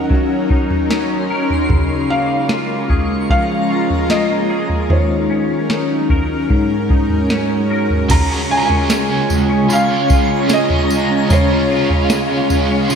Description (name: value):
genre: dream pop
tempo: 75 BPM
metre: 4/4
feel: straight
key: Db major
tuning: A4 = 440 Hz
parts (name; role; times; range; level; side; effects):
- felt-muted upright piano; melody; 0.0-13.0 s; Db5 to Bb5; -21 LUFS; right 1 dB; lush chorus, tape echo
- shimmering ambient pad; sustained chords; 0.0-13.0 s; Gb3 to Db5; -18 LUFS; equal; chorus, built-in reverb
- clean electric guitar; arpeggios; 0.0-13.0 s; Ab2 to Bb4; -20 LUFS; left 2 dB; ensemble chorus, tape echo
- soft vintage rhythm box; drums; 0.1-13.0 s; crash cymbal, kick drum, snare drum, tambourine, toms; -18 LUFS; equal; none
- twinkling granular texture; texture; 1.2-13.0 s; F5 to Db6; -28 LUFS; left 2 dB; built-in reverb, lush chorus, tape echo
- biting overdriven guitar; accompaniment; 8.1-13.0 s; Db3 to Ab4; -22 LUFS; right 4 dB; tremolo, lush chorus
room: wet lush hall reverb, RT60 2.4 s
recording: dreamy mix soaked in reverb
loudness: -13 LUFS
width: side -7 dB against mid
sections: 0.0-8.1 A section; 8.1-13.0 B section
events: none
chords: 0.0 Ebm7; 1.7 Db6; 4.9 Ebm7; 6.5 Ab9sus4; 8.1 Db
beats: 0.10 0.90 | 1.70 2.50 3.30 4.10 | 4.90 5.70 6.50 7.30 | 8.10 8.90 9.70 10.50 | 11.30 12.10 12.90